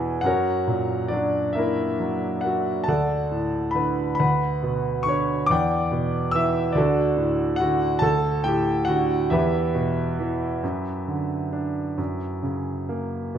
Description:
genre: classical, lyrical solo piano.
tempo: 44-49 BPM (dotted quarters).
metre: 6/8.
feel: rubato.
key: unclear.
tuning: A4 = 440 Hz.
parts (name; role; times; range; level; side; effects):
clear concert grand piano; solo; 0.0-13.4 s; D2 to E6; -21 LUFS; equal; none.
room: moderate recital hall reverb, RT60 1.4 s.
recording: minimal, uncompressed stereo recording.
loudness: -21 LUFS.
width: side -9 dB against mid.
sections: 0.0-13.3 A section.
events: none.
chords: 0.2 F#; 2.9 D; 4.2 Bmadd9/D; 5.5 Emadd9; 6.8 D; 8.0 Gsus2/D; 9.3 Em; 10.6 Bm/F#; 12.0 F#.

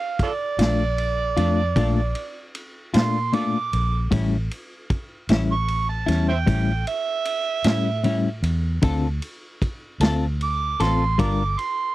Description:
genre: slow blues.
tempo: 51 BPM (dotted quarters).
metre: 12/8.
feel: straight.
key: unclear.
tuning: A4 = 439 Hz.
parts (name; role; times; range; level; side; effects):
overdriven harmonica; second line; 0.0-11.9 s; F4 to D6; -25 LUFS; right 5 dB; none.
vintage drum kit; drums; 0.2-11.8 s; kick drum, ride cymbal, snare drum; -24 LUFS; equal; none.
clean electric guitar; accompaniment; 0.6-11.4 s; A2 to Bb4; -23 LUFS; left 4 dB; harmonic tremolo.
vintage muted fingered electric bass; bass; 0.6-11.6 s; G1 to Bb2; -23 LUFS; equal; none.
room: little or no reverb.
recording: dry, close 1970s-style studio recording.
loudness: -20 LUFS.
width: side -16 dB against mid.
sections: 0.0-11.9 A section.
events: harmonica solo 0.0-11.9.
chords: 0.0 Bbmaj7; 4.1 A7; 8.8 Dm7; 11.2 Gm7.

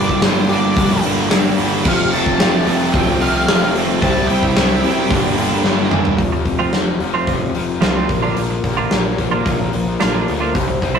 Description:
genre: quiet-loud alternative rock.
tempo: 111 BPM.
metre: 4/4.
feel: straight.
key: unclear.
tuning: A4 = 440 Hz.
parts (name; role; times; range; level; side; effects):
octave-fuzz lead guitar; melody; 0.0-5.9 s; C5 to A5; -23 LUFS; left 1 dB; distortion.
dark chamber string section; sustained chords; 0.0-6.2 s; D4 to G5; -29 LUFS; left 3 dB; none.
cranked stack guitar; riff; 0.0-6.2 s; F2 to E4; -19 LUFS; right 5 dB; overdrive.
overdriven electric guitar; riff; 0.0-11.0 s; F2 to C4; -22 LUFS; left 6 dB; harmonic tremolo.
thick fuzz guitar; riff; 0.0-6.2 s; F2 to C4; -24 LUFS; equal; none.
fuzz picked electric bass; bass; 0.0-11.0 s; F1 to D2; -24 LUFS; equal; overdrive.
big rock drum kit; drums; 0.1-10.9 s; crash cymbal, hi-hat, kick drum, snare drum, toms; -18 LUFS; equal; none.
twelve-string electric guitar; arpeggios; 6.3-11.0 s; D3 to F4; -22 LUFS; right 5 dB; spring reverb.
room: moderate small room reverb, RT60 0.6 s.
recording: rough rehearsal-room recording.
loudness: -14 LUFS.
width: side -7 dB against mid.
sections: 0.0-6.2 A section; 6.2-11.0 B section.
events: drum fill 5.6-6.2.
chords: 0.0 Gm; 1.9 Fadd9; 4.0 C; 5.1 Gm; 6.2 F; 8.1 Bb.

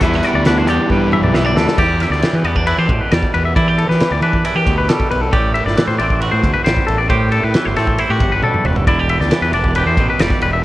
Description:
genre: math rock and midwest emo.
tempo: 136 BPM.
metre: 4/4.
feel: straight.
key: E minor.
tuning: A4 = 440 Hz.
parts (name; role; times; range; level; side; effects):
twangy electric guitar; accompaniment; 0.0-10.6 s; E2 to G4; -20 LUFS; right 4 dB; none.
twangy electric guitar; arpeggios; 0.0-10.6 s; G4 to E5; -19 LUFS; left 4 dB; slapback echo.
overdriven electric guitar; riff; 0.0-1.8 s; E3 to E4; -18 LUFS; equal; none.
fuzz fingered electric bass; bass; 0.0-10.6 s; E1 to E3; -18 LUFS; equal; overdrive.
loose indie drum kit; drums; 0.0-10.5 s; crash cymbal, hi-hat, kick drum, ride cymbal, snare drum, toms; -18 LUFS; equal; none.
room: light reverb, small room ambience.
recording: worn, warbling old tape, cassette tape, warbly pitch drift.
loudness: -13 LUFS.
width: side -16 dB against mid.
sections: 0.0-1.8 A section; 1.8-10.6 B section.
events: drum fill 0.9-1.8, 8.4-8.9.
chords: 0.0 Em9; 1.8 Em7; 5.3 Am7; 8.9 Em7.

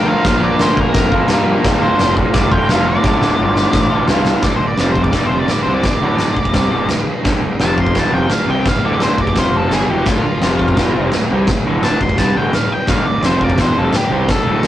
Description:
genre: garage rock duo or trio.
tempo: 171 BPM.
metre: 4/4.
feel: straight.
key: D minor.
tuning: A4 = 440 Hz.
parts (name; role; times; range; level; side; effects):
octave-fuzz lead guitar; melody; 0.0-14.7 s; F4 to C6; -20 LUFS; equal; distortion.
crunchy overdriven guitar; riff; 0.0-14.7 s; D2 to Bb4; -18 LUFS; equal; none.
fuzz fingered electric bass; bass; 0.0-14.7 s; D1 to G2; -20 LUFS; equal; overdrive.
oversized low-tuned drum kit; drums; 0.2-14.7 s; crash cymbal, kick drum, snare drum; -16 LUFS; equal; vintage 12-bit sampler grit.
room: moderate studio ambience, RT60 0.5 s.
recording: rough rehearsal-room recording, tube saturation.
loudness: -12 LUFS.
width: side -12 dB against mid.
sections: 0.0-4.4 A section; 4.4-14.7 B section.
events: drum fill 3.0-4.4; lead electric guitar solo 4.4-14.7.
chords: 0.0 Bb; 1.6 Dm; 4.4 D5; 4.8 F5; 5.1 Dm; 7.6 F5; 8.0 Dm; 9.4 F5; 9.7 Dm; 10.4 F5; 10.8 Dm; 13.2 F5; 13.6 Dm.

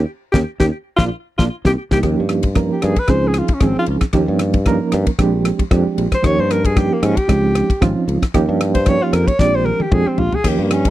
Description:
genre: electric jazz fusion.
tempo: 114 BPM.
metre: 4/4.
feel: swing 55% on 16ths.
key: unclear.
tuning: A4 = 439 Hz.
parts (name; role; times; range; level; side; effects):
bright reed electric piano; accompaniment; 0.0-10.9 s; F3 to Bb4; -19 LUFS; right 4 dB; fast tremolo.
sustaining fretless electric bass; bass; 0.0-10.9 s; Ab1 to Ab2; -19 LUFS; left 1 dB; none.
clear alto saxophone; melody; 0.3-10.9 s; Bb3 to D5; -19 LUFS; left 1 dB; slapback echo.
damped 70s drum kit; drums; 0.3-10.9 s; crash cymbal, kick drum, ride cymbal, rim click, snare drum, toms; -17 LUFS; left 1 dB; none.
room: little or no reverb.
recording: dry, close 1970s-style studio recording.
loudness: -14 LUFS.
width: side -14 dB against mid.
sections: 0.0-2.0 A section; 2.0-10.9 B section.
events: band accent 0.0-2.0; drum fill 1.0-2.0, 9.4-10.5; alto saxophone solo 2.0-10.9.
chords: 0.0 Eb7(no3); 1.0 Bb; 1.5 Cm7; 2.0 Eb9; 3.1 Dbmaj7; 4.1 Eb9; 5.2 Bb13; 6.2 Eb9; 7.3 Dbmaj7; 8.4 Eb9; 9.4 Bb13.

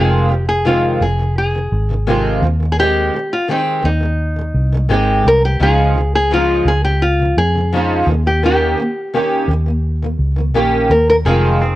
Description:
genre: pop.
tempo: 85 BPM.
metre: 4/4.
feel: straight.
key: F minor.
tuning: A4 = 440 Hz.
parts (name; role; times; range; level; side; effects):
nylon-string guitar; melody; 0.0-11.8 s; Eb4 to Bb4; -17 LUFS; left 1 dB; none.
fingerpicked acoustic archtop guitar; accompaniment; 0.0-11.8 s; F2 to G4; -17 LUFS; right 1 dB; double-tracked left and right.
vintage muted fingered electric bass; bass; 0.0-11.8 s; F1 to F2; -16 LUFS; equal; none.
direct-recorded clean electric guitar; arpeggios; 11.3-11.8 s; Eb3 to C4; -22 LUFS; right 3 dB; wide subtle chorus.
room: light reverb.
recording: worn, warbling old tape, cassette tape, warbly pitch drift.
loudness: -13 LUFS.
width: side -16 dB against mid.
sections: 0.0-11.8 A section.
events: none.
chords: 0.0 Fm7; 2.4 Abmaj7/Eb; 5.6 Dbadd9; 8.1 Eb7; 11.3 Fm7.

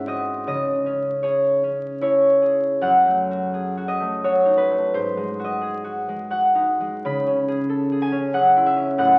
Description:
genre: classical, solo harp piece.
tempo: 68-94 BPM.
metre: 3/4.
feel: rubato.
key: C# minor.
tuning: A4 = 440 Hz.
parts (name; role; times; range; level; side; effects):
concert harp; solo; 0.0-9.2 s; F#2 to B5; -21 LUFS; equal; none.
room: moderate recital hall reverb, RT60 1.4 s.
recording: very old 78 rpm record, vinyl crackle, nothing above 10.5 kHz.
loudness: -21 LUFS.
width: mono.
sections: 0.0-2.8 A section; 2.8-9.2 B section.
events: none.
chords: 0.5 C#m; 2.8 D#dim/F#; 4.9 G#7; 7.0 C#m.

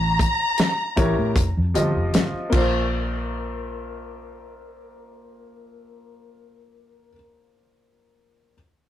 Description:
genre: lush 1970s-style soul.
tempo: 77 BPM.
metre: 4/4.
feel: straight.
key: Bb major.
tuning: A4 = 441 Hz.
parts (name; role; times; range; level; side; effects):
rich studio violin section; melody; 0.0-1.4 s; Bb5; -23 LUFS; left 1 dB; none.
vintage muted fingered electric bass; bass; 0.0-7.1 s; F1 to A2; -24 LUFS; equal; none.
damped 70s drum kit; drums; 0.2-2.7 s; crash cymbal, hi-hat, kick drum, snare drum; -23 LUFS; equal; none.
clear concert grand piano; accompaniment; 1.0-8.5 s; F3 to Eb5; -26 LUFS; left 1 dB; none.
vibraphone with hard mallets; texture; 2.5-7.1 s; Bb4; -38 LUFS; left 1 dB; none.
room: moderate small room reverb, RT60 0.5 s.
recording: rough rehearsal-room recording, tube saturation.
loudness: -20 LUFS.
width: side -12 dB against mid.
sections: 0.0-2.9 A section; 2.9-6.0 B section.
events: none.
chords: 0.0 A7b9; 1.4 F9; 2.5 Bbmaj7.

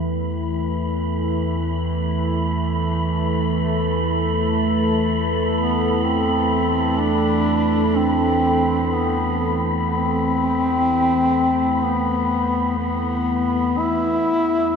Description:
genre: dark ambient drone.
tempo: free time.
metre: none.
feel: none.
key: unclear.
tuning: A4 = 441 Hz.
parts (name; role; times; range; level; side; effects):
deep dark ambient pad; sustained chords; 0.0-13.8 s; E3 to G5; -23 LUFS; right 1 dB; chorus, built-in reverb.
deep rumbling drone; drone; 0.0-14.8 s; E2 to E3; -24 LUFS; equal; built-in reverb.
wind-like tuned noise texture; texture; 0.0-14.8 s; E5 to B5; -26 LUFS; left 1 dB; built-in reverb, shimmer reverb.
mellow duduk; melody; 5.6-14.8 s; B3 to E4; -20 LUFS; left 1 dB; diffuse ambient delay.
room: wet cathedral reverb, RT60 6.0 s.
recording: none.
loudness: -18 LUFS.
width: side -6 dB against mid.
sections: 0.0-13.8 A section.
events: none.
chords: 0.0 Amadd9/E; 13.8 N.C..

